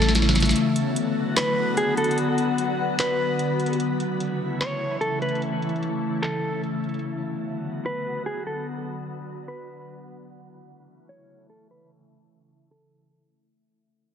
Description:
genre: hip hop, atmospheric cloud-rap.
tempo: 148 BPM.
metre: 4/4.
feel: half-time.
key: B minor.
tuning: A4 = 440 Hz.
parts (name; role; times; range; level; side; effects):
mellow electric guitar; melody; 0.0-13.1 s; G#4 to C#5; -28 LUFS; equal; digital delay.
glassy FM pad; sustained chords; 0.0-13.5 s; C#3 to F#4; -25 LUFS; left 2 dB; ensemble chorus, built-in reverb, phaser.
long sustained 808-style bass; bass; 0.0-0.5 s; A1; -21 LUFS; equal; none.
booming analog drum machine; drums; 0.0-7.0 s; handclaps, hi-hat, snare drum; -28 LUFS; right 1 dB; vintage 12-bit sampler grit.
room: moderate shimmer reverb, RT60 3.8 s.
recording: heavily compressed radio sound, multiband compression, low-pass filter.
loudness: -22 LUFS.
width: side -8 dB against mid.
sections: 0.6-13.5 A section.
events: drum fill 0.0-0.6; break 0.6-7.0; fade-out 0.6-13.5; filter sweep 0.6-13.5.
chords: 0.0 A; 0.6 Bm; 3.8 A; 7.0 Bm; 10.3 A.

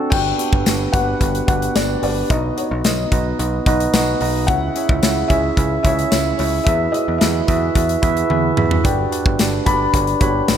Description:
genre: 1980s-style pop.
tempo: 110 BPM.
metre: 4/4.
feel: straight.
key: unclear.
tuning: A4 = 440 Hz.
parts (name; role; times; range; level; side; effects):
mellow tine electric piano; accompaniment; 0.0-10.6 s; B3 to A#5; -20 LUFS; right 3 dB; wide subtle chorus.
felt-muted upright piano; melody; 0.1-10.6 s; C#5 to B5; -24 LUFS; left 4 dB; diffuse ambient delay.
picked electric bass; bass; 0.1-10.6 s; G1 to E2; -22 LUFS; equal; none.
modern studio drum kit; drums; 0.1-10.6 s; crash cymbal, hi-hat, kick drum, snare drum, tambourine, toms; -19 LUFS; equal; none.
room: moderate plate reverb, RT60 2.8 s.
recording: dreamy mix soaked in reverb.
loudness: -15 LUFS.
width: side -9 dB against mid.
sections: 0.1-10.6 A section.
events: tine electric piano fill 3.4-4.5; drum fill 8.3-8.8.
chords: 0.1 Gmaj7; 2.3 B; 4.5 C#m; 6.7 Eadd9; 8.8 Gmaj7.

